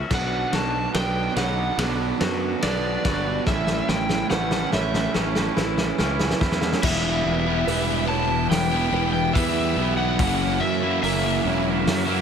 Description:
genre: post-rock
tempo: 72 BPM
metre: 4/4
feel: straight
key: E dorian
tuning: A4 = 440 Hz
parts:
  - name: overdriven slide guitar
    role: melody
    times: 0.0-12.2 s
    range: D5 to A5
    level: -27 LUFS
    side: left 2 dB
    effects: digital delay
  - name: clear studio string section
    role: sustained chords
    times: 0.0-12.2 s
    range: C#3 to G5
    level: -35 LUFS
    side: left 2 dB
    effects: none
  - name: twangy electric guitar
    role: arpeggios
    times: 0.0-6.8 s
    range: A2 to F#4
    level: -33 LUFS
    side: left 7 dB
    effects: digital delay
  - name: crunchy overdriven guitar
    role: riff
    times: 0.1-12.2 s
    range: F#2 to F#4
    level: -26 LUFS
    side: right 14 dB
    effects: none
  - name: fuzz fingered electric bass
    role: bass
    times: 0.1-12.2 s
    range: E1 to F#2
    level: -27 LUFS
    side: equal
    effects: overdrive
  - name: loose indie drum kit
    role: drums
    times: 0.1-12.1 s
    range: crash cymbal, hi-hat, kick drum, ride cymbal, snare drum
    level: -26 LUFS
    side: left 1 dB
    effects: none
  - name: felt-muted upright piano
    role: arpeggios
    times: 1.0-12.2 s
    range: A#4 to C#5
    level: -35 LUFS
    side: right 6 dB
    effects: digital delay
  - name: sludgy distorted guitar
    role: riff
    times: 6.8-12.2 s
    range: E3 to G4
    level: -27 LUFS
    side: left 15 dB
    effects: overdrive
room: light reverb, small room ambience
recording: none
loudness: -20 LUFS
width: side -7 dB against mid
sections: 0.0-6.8 A section; 6.8-12.2 B section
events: build-up 0.0-6.8; drum fill 0.0-6.8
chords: 0.1 Bm; 3.5 A; 6.8 Em; 10.2 F#7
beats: | 0.12 0.95 1.79 2.63 | 3.48 4.32 5.15 5.99 | 6.83 7.67 8.51 9.35 | 10.19 11.03 11.87

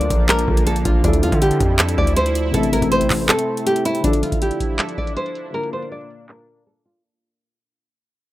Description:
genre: hip hop, trap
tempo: 160 BPM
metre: 4/4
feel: half-time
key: D minor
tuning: A4 = 438 Hz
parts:
  - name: nylon-string guitar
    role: melody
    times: 0.0-7.0 s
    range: D4 to D5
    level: -21 LUFS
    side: equal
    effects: tape echo
  - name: dark concert grand piano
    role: accompaniment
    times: 0.0-7.1 s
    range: C3 to Bb4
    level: -26 LUFS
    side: left 3 dB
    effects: none
  - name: sweeping resonant pad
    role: sustained chords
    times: 0.0-7.0 s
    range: Bb2 to E4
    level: -26 LUFS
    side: right 1 dB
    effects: chorus
  - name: distorted 808-style bass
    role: bass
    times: 0.0-3.3 s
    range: A1 to D3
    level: -20 LUFS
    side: equal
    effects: distortion
  - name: booming analog drum machine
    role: drums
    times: 0.0-6.9 s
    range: handclaps, hi-hat, kick drum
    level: -20 LUFS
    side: equal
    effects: none
room: little or no reverb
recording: rough home demo mix, low-pass filter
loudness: -16 LUFS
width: side -15 dB against mid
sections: 0.0-4.0 A section; 4.0-7.0 B section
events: kick muted 3.3-4.0; fade-out 4.0-7.0; break 6.3-7.0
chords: 0.0 Bbmaj7; 1.0 Dmadd9; 2.5 Am; 4.0 Dmadd9; 5.5 Bb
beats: 0.29 0.67 | 1.04 1.42 1.79 2.17 | 2.54 2.92 3.29 3.67 | 4.04 4.42 4.79 5.17 | 5.54 5.92 6.29 6.67

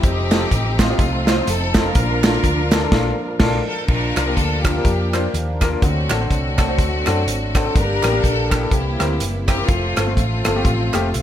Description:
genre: uptempo gospel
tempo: 124 BPM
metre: 4/4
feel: swing 58% on 8ths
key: Bb major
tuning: A4 = 444 Hz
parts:
  - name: clear studio string section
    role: melody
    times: 0.0-11.2 s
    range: A3 to Bb4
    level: -23 LUFS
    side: left 1 dB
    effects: none
  - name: tonewheel organ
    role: sustained chords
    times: 0.0-11.2 s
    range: D3 to Bb4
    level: -29 LUFS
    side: right 1 dB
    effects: slow rotary speaker, overdrive, chorus vibrato
  - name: hollow-body short-scale fingered electric bass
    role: bass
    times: 0.0-11.2 s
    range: F1 to F#2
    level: -22 LUFS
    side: equal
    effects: none
  - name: natural country drum kit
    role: drums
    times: 0.0-11.2 s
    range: crash cymbal, hi-hat, kick drum, rim click, snare drum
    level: -19 LUFS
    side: equal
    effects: none
  - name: clear grand piano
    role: accompaniment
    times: 0.3-11.1 s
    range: G2 to C5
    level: -24 LUFS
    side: left 3 dB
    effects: none
  - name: group handclap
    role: percussion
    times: 0.3-11.0 s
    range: none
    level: -32 LUFS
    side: right 5 dB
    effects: none
  - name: dark French horn section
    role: sustained chords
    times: 3.9-11.2 s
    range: F3 to G4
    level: -32 LUFS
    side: right 1 dB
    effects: none
room: light reverb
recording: none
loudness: -16 LUFS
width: side -11 dB against mid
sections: 0.0-3.9 A section; 3.9-11.2 B section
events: band accent 2.9-3.9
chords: 0.0 F7; 2.0 Bbmaj7; 3.9 Bb; 5.8 D7; 7.8 Gm; 8.7 C7; 9.7 F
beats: | 0.03 0.52 1.00 1.48 | 1.96 2.44 2.92 3.41 | 3.89 4.37 4.85 5.34 | 5.82 6.30 6.79 7.27 | 7.75 8.24 8.72 9.20 | 9.69 10.17 10.65 11.14

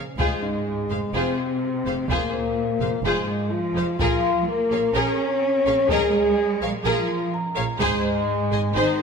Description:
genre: cinematic, hybrid orchestral and electronic film score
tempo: 126 BPM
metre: 4/4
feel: straight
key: Bb minor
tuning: A4 = 436 Hz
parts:
  - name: clear symphonic violin section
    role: second line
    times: 0.0-9.0 s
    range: F4 to Ab5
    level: -28 LUFS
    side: left 3 dB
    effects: none
  - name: warm symphonic viola section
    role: accompaniment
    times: 0.0-9.0 s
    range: Ab4 to C5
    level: -30 LUFS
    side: right 2 dB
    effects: none
  - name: rich symphonic double bass section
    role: bass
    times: 0.0-8.8 s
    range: F1 to Bb1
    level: -32 LUFS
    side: right 5 dB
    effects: none
  - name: felt-muted upright piano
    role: texture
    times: 0.0-9.0 s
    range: Eb4 to Bb5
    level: -36 LUFS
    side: equal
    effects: none
  - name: warm French horn section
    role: sustained chords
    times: 0.2-9.0 s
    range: Ab3 to Db5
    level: -24 LUFS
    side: left 2 dB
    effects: none
  - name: rich symphonic cello section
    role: bass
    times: 0.2-9.0 s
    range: Ab2 to Db4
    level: -28 LUFS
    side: right 3 dB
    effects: none
  - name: taiko ensemble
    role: drums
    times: 0.2-8.2 s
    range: none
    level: -30 LUFS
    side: right 1 dB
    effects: none
room: moderate scoring stage reverb, RT60 2.0 s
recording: none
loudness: -20 LUFS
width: side -5 dB against mid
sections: 0.0-9.0 A section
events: none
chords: 0.2 Fm; 4.0 Bbm7; 7.8 Ab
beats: | 0.19 0.66 1.14 1.62 | 2.09 2.57 3.04 3.52 | 4.00 4.47 4.95 5.43 | 5.90 6.38 6.86 7.33 | 7.81 8.28 8.76

